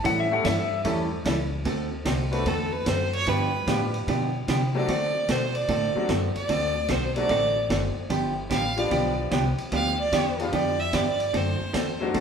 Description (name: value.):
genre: country, western swing.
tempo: 149 BPM.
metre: 4/4.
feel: swing 67% on 8ths.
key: D mixolydian.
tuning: A4 = 443 Hz.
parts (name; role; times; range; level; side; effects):
pedal steel guitar; second line; 0.0-0.8 s; E5 to F#5; -26 LUFS; left 4 dB; none.
vintage hollow-body jazz guitar; accompaniment; 0.0-12.2 s; D3 to A4; -27 LUFS; right 2 dB; none.
upright bass; bass; 0.0-12.2 s; F#1 to D3; -30 LUFS; equal; none.
vintage drum kit; drums; 0.0-12.2 s; hi-hat, kick drum, ride cymbal, snare drum; -34 LUFS; left 2 dB; none.
bright upright piano; accompaniment; 0.3-12.2 s; F3 to A4; -31 LUFS; left 3 dB; none.
clear fiddle; second line; 2.3-12.0 s; A4 to F5; -27 LUFS; right 1 dB; none.
room: wet large studio reverb, RT60 1.4 s.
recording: band playing live in one room.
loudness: -23 LUFS.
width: side -6 dB against mid.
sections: 0.0-1.7 A section; 1.7-12.2 A section.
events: pedal steel guitar solo 0.0-1.7; fiddle solo 1.7-12.2.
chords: 0.0 A7; 1.7 D7; 3.3 G7; 4.9 D7; 8.1 G7; 11.3 D7.